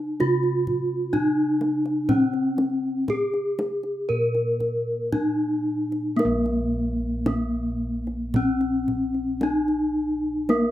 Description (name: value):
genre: Javanese gamelan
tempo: 56-65 BPM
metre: 4/4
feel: straight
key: Bb slendro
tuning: A4 = 443 Hz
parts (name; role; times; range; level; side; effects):
- gamelan-type bronze metallophone; melody; 0.0-10.7 s; Bb3 to Bb4; -23 LUFS; left 1 dB; none
- gamelan-type bossed gongs; bass; 0.2-10.7 s; Bb1 to Bb4; -29 LUFS; equal; none
- kendang; percussion; 0.2-10.7 s; none; -30 LUFS; right 1 dB; none
room: wet studio reverb, RT60 0.6 s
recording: rough home demo mix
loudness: -22 LUFS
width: side -13 dB against mid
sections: 0.0-6.2 A section; 6.2-10.7 B section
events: none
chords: none